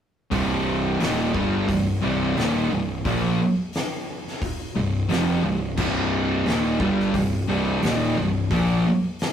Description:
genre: stoner and doom metal.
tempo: 88 BPM.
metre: 4/4.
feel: straight.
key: C minor.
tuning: A4 = 438 Hz.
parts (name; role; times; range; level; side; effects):
raw garage guitar; riff; 0.3-8.8 s; C2 to Bb3; -26 LUFS; right 1 dB; overdrive.
thick fuzz guitar; riff; 0.3-8.8 s; C2 to Bb3; -26 LUFS; left 4 dB; distortion.
thick fuzz guitar; riff; 0.3-8.8 s; C2 to Bb3; -24 LUFS; right 3 dB; distortion.
growling picked electric bass; bass; 0.3-8.8 s; C1 to Bb1; -33 LUFS; equal; overdrive.
oversized low-tuned drum kit; drums; 0.3-9.3 s; crash cymbal, hi-hat, kick drum, snare drum; -29 LUFS; left 1 dB; none.
room: moderate stone room reverb, RT60 1.2 s.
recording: rough rehearsal-room recording, warm saturation.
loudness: -20 LUFS.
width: side -9 dB against mid.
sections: 0.3-9.3 A section.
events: none.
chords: 0.3 Cm.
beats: | 0.32 1.00 1.68 2.37 | 3.05 3.73 4.42 5.10 | 5.78 6.46 7.15 7.83 | 8.51 9.19.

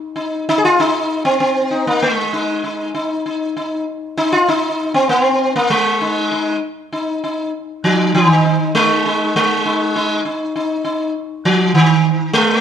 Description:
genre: indian classical.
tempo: 98 BPM.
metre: 3/4.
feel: straight.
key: Eb raga durga.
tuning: A4 = 441 Hz.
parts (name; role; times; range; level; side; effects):
sitar; solo; 0.2-12.6 s; Eb3 to Ab4; -14 LUFS; equal; none.
room: moderate large studio reverb, RT60 1.2 s.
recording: band playing live in one room.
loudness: -14 LUFS.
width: side -8 dB against mid.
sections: 0.0-9.3 A section; 9.3-12.6 B section.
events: speeding up 0.0-12.6.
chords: none.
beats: | 0.15 0.77 1.39 | 2.00 2.62 3.24 | 3.85 4.46 5.08 | 5.69 6.30 6.91 | 7.51 8.12 8.73 | 9.33 9.94 10.54 | 11.14 11.74 12.34.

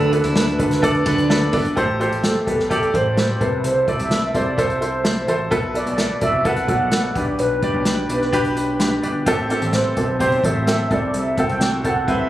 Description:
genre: piano-driven pop.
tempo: 128 BPM.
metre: 4/4.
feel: straight.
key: unclear.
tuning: A4 = 440 Hz.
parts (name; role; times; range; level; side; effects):
warm velvety synth lead; melody; 0.0-12.3 s; A4 to G5; -22 LUFS; right 1 dB; chorus.
clear upright piano; accompaniment; 0.0-12.3 s; A2 to B5; -20 LUFS; equal; none.
picked steel-string acoustic guitar; riff; 0.0-1.6 s; B3 to E4; -25 LUFS; right 3 dB; none.
fat analog bass; bass; 0.0-12.3 s; G1 to D2; -24 LUFS; equal; none.
unplugged drum kit; drums; 0.0-12.2 s; hi-hat, kick drum, snare drum; -24 LUFS; equal; none.
room: moderate large studio reverb, RT60 0.9 s, small room reverb.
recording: recorded on a phone in the room, club reverb.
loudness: -17 LUFS.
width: side -14 dB against mid.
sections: 0.0-1.8 A section; 1.8-12.3 B section.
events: upright piano fill 8.6-9.3.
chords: 0.0 Bm7/D; 1.8 Am7; 5.5 B7sus4; 7.2 G/B; 9.3 Am7; 10.9 C6.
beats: 0.36 0.83 1.30 | 1.77 2.23 2.70 3.17 | 3.64 4.11 4.58 5.05 | 5.52 5.99 6.45 6.92 | 7.39 7.86 8.33 8.80 | 9.27 9.74 10.20 10.67 | 11.14 11.61 12.08.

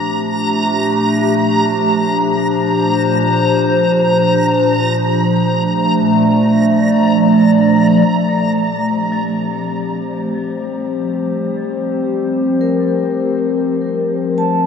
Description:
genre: ambient.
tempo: 74 BPM.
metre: 4/4.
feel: straight.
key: unclear.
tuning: A4 = 440 Hz.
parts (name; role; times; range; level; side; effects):
warbly tape-like pad; sustained chords; 0.0-14.7 s; Bb2 to D5; -14 LUFS; equal; chorus, built-in reverb, shimmer reverb.
backwards swelling texture; texture; 0.0-8.1 s; Bb5; -20 LUFS; equal; built-in reverb, shimmer reverb.
vibraphone with medium hard mallets; arpeggios; 8.3-14.7 s; F3 to A5; -22 LUFS; left 1 dB; diffuse ambient delay.
room: wet huge ambient reverb, RT60 7.8 s.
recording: worn, warbling old tape, cassette tape, warbly pitch drift.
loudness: -13 LUFS.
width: side -6 dB against mid.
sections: 0.0-8.1 A section; 8.1-14.7 B section.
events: fade-in on ambient pad 0.0-8.1; fade-in on synth texture 0.0-8.1; fade-in on vibraphone 8.1-14.7.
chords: 0.0 Bbmaj7.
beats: 0.69 | 1.50 2.31 3.12 3.94 | 4.76 5.58 6.41 7.25 | 8.08 8.91 9.72 10.54 | 11.36 12.17 12.98 13.79 | 14.60.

